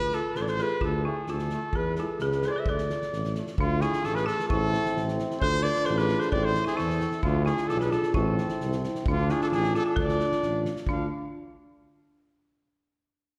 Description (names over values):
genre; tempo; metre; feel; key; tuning
balkan folk, Balkan brass band; 132 BPM; 2/4; straight; D dorian sharp4; A4 = 435 Hz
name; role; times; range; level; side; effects
mellow trumpet; melody; 0.0-11.1 s; F4 to F5; -32 LUFS; equal; none
folk marimba with hard mallets; second line; 0.0-11.1 s; D4 to C5; -35 LUFS; equal; none
mellow tuba; bass; 0.0-11.1 s; A1 to E2; -32 LUFS; equal; none
clear trombone; accompaniment; 0.1-11.1 s; G#3 to D4; -39 LUFS; equal; none
dark euphonium; accompaniment; 0.1-11.1 s; E4 to F4; -36 LUFS; equal; none
loose indie drum kit; percussion; 0.1-11.1 s; kick drum, snare drum; -37 LUFS; equal; none
room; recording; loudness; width
wet scoring stage reverb, RT60 1.5 s; heard from further back in the room; -27 LUFS; mono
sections
0.0-3.6 A section; 3.6-10.9 B section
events
none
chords
0.0 Dm; 1.7 E; 2.7 Dm; 4.5 Am; 5.4 Dm; 6.3 Am; 7.2 Dm; 8.2 Am; 9.1 Dm